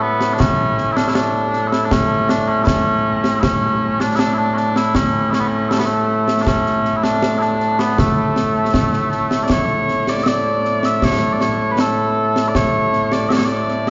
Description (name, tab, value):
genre	scottish traditional, Scottish pipe music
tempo	79 BPM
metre	2/4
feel	straight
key	A major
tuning	A4 = 436 Hz
part	mellow small bagpipes	melody	0.0-13.9 s	A2 to E5	-19 LUFS	equal	none
part	concert snare drum and concert bass drum	drums	0.2-13.9 s	none	-23 LUFS	equal	none
room	wet concert hall reverb, RT60 2.5 s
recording	heard from further back in the room, nothing above 7.5 kHz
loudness	-17 LUFS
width	mono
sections	0.0-9.5 A section; 9.5-13.9 A section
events	none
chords	none